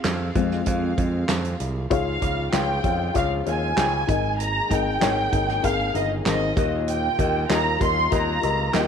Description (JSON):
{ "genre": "piano-driven pop", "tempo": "97 BPM", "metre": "4/4", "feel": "straight", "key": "unclear", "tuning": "A4 = 439 Hz", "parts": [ { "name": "warm studio string section", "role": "sustained chords", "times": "0.0-8.9 s", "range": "Db3 to F5", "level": "-34 LUFS", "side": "right 2 dB", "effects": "none" }, { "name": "picked electric bass", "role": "bass", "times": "0.0-8.9 s", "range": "G1 to F2", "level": "-27 LUFS", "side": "right 2 dB", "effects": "none" }, { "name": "natural country drum kit", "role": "drums", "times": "0.0-8.9 s", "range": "handclaps, hi-hat, kick drum, snare drum", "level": "-26 LUFS", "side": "right 2 dB", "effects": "none" }, { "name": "felt-muted upright piano", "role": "accompaniment", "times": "0.4-8.9 s", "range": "Ab2 to G5", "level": "-26 LUFS", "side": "left 9 dB", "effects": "none" }, { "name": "warm studio violin section", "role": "melody", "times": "1.9-8.9 s", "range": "Eb5 to C6", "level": "-25 LUFS", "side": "right 2 dB", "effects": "none" } ], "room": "light reverb, studio ambience", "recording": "1960s-style stereo", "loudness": "-20 LUFS", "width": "side -7 dB against mid", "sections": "0.0-1.9 A section; 1.9-8.9 B section", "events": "felt piano solo 0.0-1.9", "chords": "0.0 Fm; 1.9 Db; 4.1 Absus2; 6.6 Ebadd9", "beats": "0.05 0.67 1.29 | 1.91 2.53 3.15 3.77 | 4.39 5.01 5.63 6.26 | 6.88 7.50 8.12 8.74" }